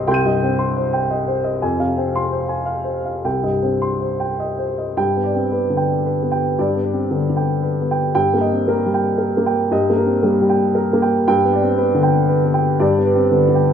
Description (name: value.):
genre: neoclassical minimalist piano.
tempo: 115 BPM.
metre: 3/4.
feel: rubato.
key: unclear.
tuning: A4 = 441 Hz.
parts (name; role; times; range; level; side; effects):
warm upright piano; solo; 0.0-13.7 s; C2 to Eb7; -16 LUFS; equal; none.
room: moderate recital hall reverb, RT60 1.5 s.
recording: minimal, uncompressed stereo recording.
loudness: -16 LUFS.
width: side -8 dB against mid.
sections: 0.0-5.0 A section; 5.0-13.7 B section.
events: none.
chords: 0.0 Cm; 1.6 Fm; 3.2 Cm; 5.0 G; 8.1 Eb/G; 11.3 G.